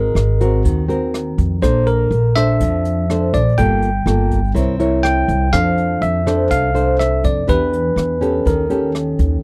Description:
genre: bossa nova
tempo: 123 BPM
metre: 4/4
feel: straight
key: unclear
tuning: A4 = 440 Hz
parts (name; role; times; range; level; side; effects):
- bell-like tine electric piano; melody; 0.0-8.9 s; A#4 to G5; -22 LUFS; equal; none
- nylon-string guitar; accompaniment; 0.0-9.4 s; C3 to Db5; -22 LUFS; equal; none
- upright bass; bass; 0.0-9.4 s; G1 to F2; -21 LUFS; equal; none
- jazz brush drum kit; drums; 0.2-9.3 s; hi-hat, kick drum, rim click; -26 LUFS; equal; none
room: little or no reverb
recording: dry, close 1970s-style studio recording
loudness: -17 LUFS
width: mono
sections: 0.0-9.4 A section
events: none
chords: 0.0 G#9; 1.6 Bbmaj9; 3.6 Gm9; 4.5 C7b9; 5.5 F6; 7.5 Em7; 8.5 D#7#11

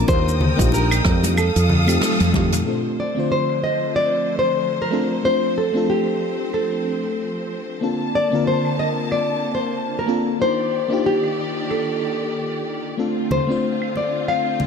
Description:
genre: sunset chillout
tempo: 93 BPM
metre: 4/4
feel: swing 57% on 16ths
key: unclear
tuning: A4 = 440 Hz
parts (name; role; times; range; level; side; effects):
- nylon-string guitar; melody; 0.0-14.7 s; G4 to F5; -22 LUFS; left 1 dB; ping-pong delay
- mellow FM electric piano; accompaniment; 0.0-14.7 s; D3 to C5; -24 LUFS; left 1 dB; chorus, auto-pan, ping-pong delay
- clear symphonic string section; sustained chords; 0.0-14.7 s; D3 to Eb6; -28 LUFS; equal; none
- woody fretless electric bass; bass; 0.0-2.6 s; Bb1 to F2; -19 LUFS; right 1 dB; none
- electronic kick drum; drums; 0.1-2.5 s; none; -21 LUFS; right 1 dB; overdrive
- jazz brush drum kit; drums; 0.1-14.6 s; claves, hi-hat, rim click, shaker, toms; -25 LUFS; equal; low-pass filter on hats, low-pass filter on toms, low-pass filter on snare, low-pass filter on perc, low-pass filter on room
- congas; percussion; 0.1-2.5, 13.3-14.7 s; none; -26 LUFS; left 3 dB; none
room: moderate lush hall reverb, RT60 1.9 s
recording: none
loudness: -18 LUFS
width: side -6 dB against mid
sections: 0.0-2.7 A section; 2.7-14.7 B section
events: drum fill 2.0-2.7; band accent 2.0-2.3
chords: 0.1 Ebmaj7; 1.4 F7; 2.7 Dm7; 7.8 Bbmaj7; 10.4 Ebmaj7; 13.0 Dm7

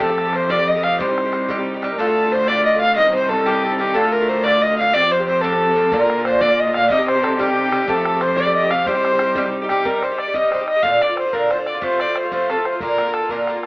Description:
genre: celtic folk, Celtic jig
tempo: 122 BPM (dotted quarters)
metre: 6/8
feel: straight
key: C dorian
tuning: A4 = 442 Hz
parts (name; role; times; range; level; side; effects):
- dark fiddle; melody; 0.0-13.7 s; G4 to F5; -18 LUFS; equal; none
- accordion; second line; 0.0-13.7 s; G4 to F5; -23 LUFS; left 1 dB; none
- Irish bouzouki; accompaniment; 0.0-13.7 s; G2 to G4; -22 LUFS; right 1 dB; none
- rich cello; bass; 0.0-9.8 s; C2 to C3; -25 LUFS; equal; none
- bodhran; percussion; 0.0-1.9, 5.9-13.7 s; none; -31 LUFS; equal; none
room: moderate studio reverb, RT60 0.6 s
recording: AM radio sound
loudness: -15 LUFS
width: side -25 dB against mid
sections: 0.0-2.0 A section; 2.0-9.9 A section; 9.9-13.7 B section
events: none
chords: 0.0 Fadd9; 1.0 Cm; 2.0 Dm; 3.0 Cm; 4.0 Dm; 4.9 Fadd9; 5.9 Bb; 6.9 Cm; 7.9 Fadd9; 8.9 Cm; 10.8 Bb; 11.8 F; 12.8 Bb

